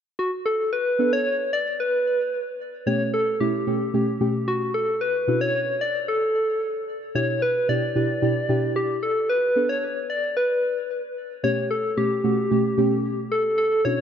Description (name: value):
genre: pop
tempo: 112 BPM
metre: 4/4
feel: straight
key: B minor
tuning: A4 = 439 Hz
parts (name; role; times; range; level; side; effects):
- soft struck synth lead; melody; 0.2-14.0 s; F#4 to D5; -23 LUFS; left 1 dB; chorus, tremolo, ping-pong delay
- deep mellow chord stab; accompaniment; 1.0-14.0 s; B2 to A4; -24 LUFS; right 1 dB; chorus
room: moderate lush hall reverb, RT60 2.8 s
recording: none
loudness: -21 LUFS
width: side -8 dB against mid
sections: 0.7-14.0 A section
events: none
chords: 0.0 N.C.; 0.7 Bm7; 2.9 A7/B; 5.0 Dmaj9/B; 7.2 Em7/B; 9.3 Bm7; 11.4 A7/B